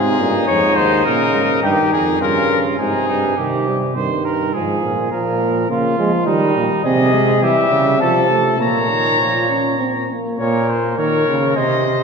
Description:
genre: classical, imitative canzona for brass ensemble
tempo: 103 BPM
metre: 3/4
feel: straight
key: Bb minor from 6.9 s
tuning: A4 = 438 Hz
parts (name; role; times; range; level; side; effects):
- warm trumpet; melody; 0.0-3.4, 6.8-12.0 s; G4 to Bb5; -18 LUFS; left 5 dB; none
- warm trumpet; second line; 0.0-12.0 s; Eb4 to Db5; -22 LUFS; right 4 dB; none
- warm euphonium; accompaniment; 0.0-10.4 s; Ab2 to Db4; -20 LUFS; right 1 dB; none
- warm bass trombone; bass; 0.0-12.0 s; Eb2 to F3; -20 LUFS; right 2 dB; none
room: wet church reverb, RT60 2.7 s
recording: recorded in a church or concert hall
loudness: -14 LUFS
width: side -5 dB against mid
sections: 0.0-3.4 A section; 3.4-10.4 B section; 10.4-12.0 C section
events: none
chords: 0.0 Ab; 1.1 Bbm; 1.6 Eb; 2.8 Ab; 3.4 Cm; 4.5 Fm/Ab; 5.1 Bbm; 6.3 Eb; 6.9 Ab/C; 7.4 C#dim; 8.0 F/C; 8.6 Bbm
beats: 0.48 1.06 | 1.64 2.22 2.80 | 3.39 3.97 4.55 | 5.12 5.70 6.27 | 6.85 7.43 8.01 | 8.61 9.20 9.80 | 10.39 10.98 11.56

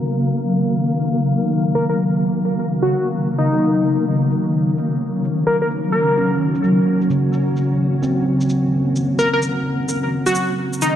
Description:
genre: future garage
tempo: 129 BPM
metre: 4/4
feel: swing 63% on 16ths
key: Eb dorian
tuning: A4 = 440 Hz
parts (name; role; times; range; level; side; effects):
- mellow tine electric piano; accompaniment; 0.0-11.0 s; Db3 to Db4; -20 LUFS; right 1 dB; medium stereo tremolo, vintage 12-bit sampler grit, tape echo
- granular cloud pad; sustained chords; 0.0-11.0 s; Db3 to F5; -19 LUFS; equal; built-in reverb
- flickering grainy texture; texture; 0.0-11.0 s; Bb3 to Bb4; -29 LUFS; equal; built-in reverb
- shaker; drums; 0.1-10.9 s; none; -30 LUFS; equal; overdrive, small room ambience
- plucky unison lead; melody; 1.8-6.3, 9.2-11.0 s; Eb4 to Bb4; -21 LUFS; left 1 dB; analog delay
- swell; sound effects; 10.9-11.0 s; none; -26 LUFS; left 2 dB; none
room: moderate lush hall reverb, RT60 1.9 s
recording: vinyl crackle, low-pass filter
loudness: -16 LUFS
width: side -10 dB against mid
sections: 0.0-11.0 A section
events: filter sweep on ambient pad 0.0-11.0; filter sweep 0.0-11.0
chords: 0.0 Ebm9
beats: 0.12 | 0.59 1.05 1.52 1.99 | 2.45 2.92 3.38 3.85 | 4.31 4.78 5.24 5.71 | 6.17 6.64 7.10 7.57 | 8.03 8.50 8.96 9.43 | 9.89 10.36 10.82

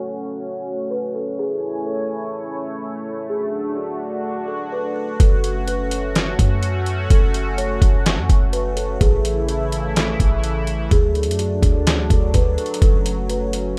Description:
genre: hip hop, atmospheric cloud-rap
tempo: 126 BPM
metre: 4/4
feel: half-time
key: F# minor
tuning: A4 = 440 Hz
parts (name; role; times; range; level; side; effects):
- buzzing kalimba; melody; 0.0-13.8 s; F#4 to C#5; -29 LUFS; equal; tape echo
- sweeping resonant pad; sustained chords; 0.0-13.8 s; C#3 to G#5; -28 LUFS; equal; chorus, sidechain pumping
- warm 808-style bass; bass; 5.2-13.8 s; F#1 to F#2; -24 LUFS; equal; none
- trip hop sampler-style drum kit; drums; 5.2-13.6 s; hi-hat, kick drum, snare drum; -19 LUFS; equal; none
room: little or no reverb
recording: rough home demo mix, low-pass filter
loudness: -20 LUFS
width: mono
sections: 0.0-5.2 A section; 5.2-13.8 B section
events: filter sweep 0.0-5.2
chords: 0.0 F#m; 1.4 Amaj7; 3.3 D; 5.2 F#m; 9.0 Amaj7; 10.9 D; 12.8 F#m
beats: 0.44 0.91 | 1.39 1.86 2.34 2.82 | 3.29 3.77 4.25 4.72 | 5.20 5.67 6.15 6.63 | 7.10 7.58 8.06 8.53 | 9.01 9.48 9.96 10.44 | 10.91 11.39 11.87 12.34 | 12.82 13.29 13.77

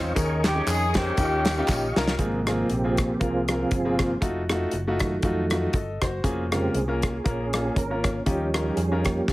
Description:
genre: uptempo gospel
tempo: 118 BPM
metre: 4/4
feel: swing 56% on 8ths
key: Ab major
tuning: A4 = 440 Hz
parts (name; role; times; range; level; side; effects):
- warm saxophone section; melody; 0.0-1.9 s; Ab3 to Ab4; -26 LUFS; left 1 dB; none
- bright concert grand piano; accompaniment; 0.0-9.3 s; Ab2 to Eb5; -28 LUFS; left 1 dB; none
- tonewheel organ; sustained chords; 0.0-9.3 s; C3 to Db6; -28 LUFS; right 1 dB; slow rotary speaker, chorus vibrato
- fingered electric bass; bass; 0.0-9.3 s; F1 to F2; -29 LUFS; equal; none
- natural country drum kit; drums; 0.2-9.3 s; hi-hat, kick drum, rim click, snare drum; -26 LUFS; equal; none
- tambourine and handclaps; percussion; 0.2-2.1 s; none; -36 LUFS; equal; none
room: light reverb, small room ambience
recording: heavily compressed radio sound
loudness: -22 LUFS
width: side -18 dB against mid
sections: 0.0-2.2 A section; 2.2-9.3 B section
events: drum fill 1.7-2.2; tonewheel organ solo 2.2-9.3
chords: 0.2 Eb7sus4; 1.2 Eb9; 2.2 Ab69; 4.2 F7b9; 6.2 Bbm7/F; 8.3 Eb9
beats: | 0.17 0.67 1.18 1.68 | 2.19 2.69 3.20 3.71 | 4.21 4.72 5.23 5.73 | 6.24 6.75 7.25 7.76 | 8.27 8.77 9.28

